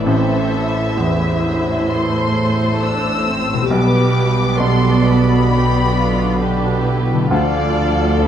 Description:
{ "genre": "cinematic, emotional film score for orchestra", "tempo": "66 BPM", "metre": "4/4", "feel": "rubato", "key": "A minor", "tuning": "A4 = 440 Hz", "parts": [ { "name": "muted studio violin section", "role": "melody", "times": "0.0-8.2 s", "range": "D5 to E6", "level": "-23 LUFS", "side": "left 3 dB", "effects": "none" }, { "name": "muted studio violin section", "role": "second line", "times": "0.0-8.3 s", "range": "F4 to D5", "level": "-23 LUFS", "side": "left 3 dB", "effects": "none" }, { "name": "clear baby grand piano", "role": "accompaniment", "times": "0.0-8.3 s", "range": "A1 to B2", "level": "-22 LUFS", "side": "right 1 dB", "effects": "none" }, { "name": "muted studio viola section", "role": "accompaniment", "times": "0.0-8.3 s", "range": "D3 to F5", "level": "-22 LUFS", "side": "right 2 dB", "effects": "none" }, { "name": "concert harp", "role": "arpeggios", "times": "0.0-8.3 s", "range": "A2 to E5", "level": "-25 LUFS", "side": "left 8 dB", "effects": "none" }, { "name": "muted studio cello section", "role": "bass", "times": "0.0-8.3 s", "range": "D2 to B2", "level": "-20 LUFS", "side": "right 2 dB", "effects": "none" }, { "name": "muted studio double bass section", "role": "bass", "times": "0.0-8.3 s", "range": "A1 to D2", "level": "-20 LUFS", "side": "right 3 dB", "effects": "none" } ], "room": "light reverb", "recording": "close, detailed microphones", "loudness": "-14 LUFS", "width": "side -9 dB against mid", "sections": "0.0-8.3 A section", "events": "none", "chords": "0.1 Am; 3.7 G/B; 7.3 Dm" }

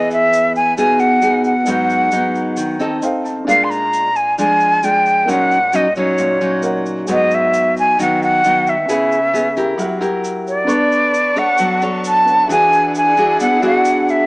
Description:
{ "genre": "bossa nova", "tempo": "133 BPM", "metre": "4/4", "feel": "straight", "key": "G# minor, B minor from 10.7 s", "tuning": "A4 = 442 Hz", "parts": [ { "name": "jazz flute", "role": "melody", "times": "0.0-14.3 s", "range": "C#5 to B#5", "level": "-14 LUFS", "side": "equal", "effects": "none" }, { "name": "nylon-string guitar", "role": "accompaniment", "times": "0.0-14.3 s", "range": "G#2 to C#5", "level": "-18 LUFS", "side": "equal", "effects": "none" }, { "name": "warm baby grand piano", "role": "accompaniment", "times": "0.0-14.3 s", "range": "A#3 to E6", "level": "-26 LUFS", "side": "right 1 dB", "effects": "none" }, { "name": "tube shaker", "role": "percussion", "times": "0.1-14.3 s", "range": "none", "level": "-35 LUFS", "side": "right 1 dB", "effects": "none" }, { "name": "clear studio string section", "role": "sustained chords", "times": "10.7-14.3 s", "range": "D4 to C#6", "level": "-27 LUFS", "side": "left 1 dB", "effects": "none" } ], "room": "light reverb", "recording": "small speaker sound", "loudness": "-12 LUFS", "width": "side -26 dB against mid", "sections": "0.0-10.7 A section; 10.7-14.3 B section", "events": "grand piano fill 2.6-3.5", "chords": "0.0 Emaj7; 1.7 G#m7; 3.0 F7; 3.5 A#7; 5.3 D#m7/A#; 7.1 G#m7; 8.9 C#m7; 9.8 F#7b9; 10.7 Bm9; 12.5 E9" }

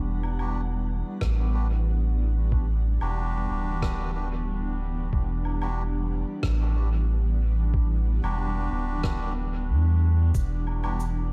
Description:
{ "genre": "ambient dub", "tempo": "92 BPM", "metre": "4/4", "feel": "straight", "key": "E minor", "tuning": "A4 = 440 Hz", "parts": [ { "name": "granular cloud pad", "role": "sustained chords", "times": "0.0-11.3 s", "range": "E3 to F#5", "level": "-36 LUFS", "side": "equal", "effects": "built-in reverb" }, { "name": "soft dub sub bass", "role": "bass", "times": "0.0-11.3 s", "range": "D1 to E2", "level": "-27 LUFS", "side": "equal", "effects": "none" }, { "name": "woodblock, rim click and cabasa", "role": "drums", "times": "0.2-11.1 s", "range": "none", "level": "-42 LUFS", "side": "equal", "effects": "small room ambience, dub echo" }, { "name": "melodica", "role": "stabs", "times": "0.4-11.0 s", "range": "D4 to B4", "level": "-40 LUFS", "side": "equal", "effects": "dub echo" }, { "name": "electronic kick drum", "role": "drums", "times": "1.2-10.5 s", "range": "none", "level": "-30 LUFS", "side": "equal", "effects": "small room ambience" } ], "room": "studio reverb", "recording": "echo-heavy mix", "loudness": "-26 LUFS", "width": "mono", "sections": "0.0-11.3 A section", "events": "none", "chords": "0.0 Em7" }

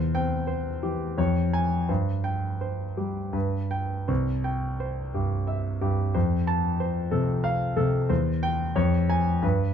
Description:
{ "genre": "classical, romantic character piece for solo piano", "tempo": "79-93 BPM", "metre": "3/4", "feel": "rubato", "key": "C major", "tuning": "A4 = 436 Hz", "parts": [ { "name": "clear concert grand piano", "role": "solo", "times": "0.0-9.7 s", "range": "C2 to A5", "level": "-24 LUFS", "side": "equal", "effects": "none" } ], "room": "light reverb", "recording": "minimal, uncompressed stereo recording", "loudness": "-24 LUFS", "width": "side -8 dB against mid", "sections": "0.0-9.7 A section", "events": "none", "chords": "0.0 C/E; 1.2 Db/F; 1.9 C5/G; 3.3 G; 4.1 C; 6.1 F; 8.1 C/E; 8.8 Db/F" }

